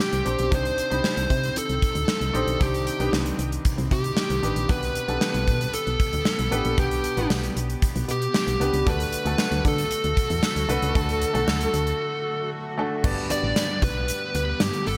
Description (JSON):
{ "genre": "1980s-style pop", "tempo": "115 BPM", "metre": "4/4", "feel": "straight", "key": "G major", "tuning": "A4 = 440 Hz", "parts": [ { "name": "fuzz lead guitar", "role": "melody", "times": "0.0-15.0 s", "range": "G4 to D5", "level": "-29 LUFS", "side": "equal", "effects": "distortion" }, { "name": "warm baby grand piano", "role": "accompaniment", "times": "0.0-15.0 s", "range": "G2 to B5", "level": "-33 LUFS", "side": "equal", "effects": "none" }, { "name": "glassy FM pad", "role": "sustained chords", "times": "0.1-15.0 s", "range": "D3 to G4", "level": "-39 LUFS", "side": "equal", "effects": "ensemble chorus, built-in reverb" }, { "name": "solid FM bass", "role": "bass", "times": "0.1-15.0 s", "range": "G1 to D3", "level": "-30 LUFS", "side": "equal", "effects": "none" }, { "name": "gated 80s drum kit", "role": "drums", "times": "0.1-15.0 s", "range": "crash cymbal, hi-hat, kick drum, snare drum, tambourine", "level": "-28 LUFS", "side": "equal", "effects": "none" } ], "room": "light reverb, studio reverb", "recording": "none", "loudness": "-24 LUFS", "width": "mono", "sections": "0.0-13.0 A section; 13.0-15.0 B section", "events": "break 12.0-13.0", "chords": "0.0 Csus2; 0.5 Cmadd9; 4.7 G; 8.9 D; 13.0 G", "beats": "0.00 | 0.52 1.04 1.56 2.08 | 2.61 3.13 3.65 4.17 | 4.69 5.21 5.74 6.26 | 6.78 7.30 7.82 8.35 | 8.87 9.39 9.91 10.43 | 10.95 11.47 12.00 12.52 | 13.04 13.56 14.08 14.61" }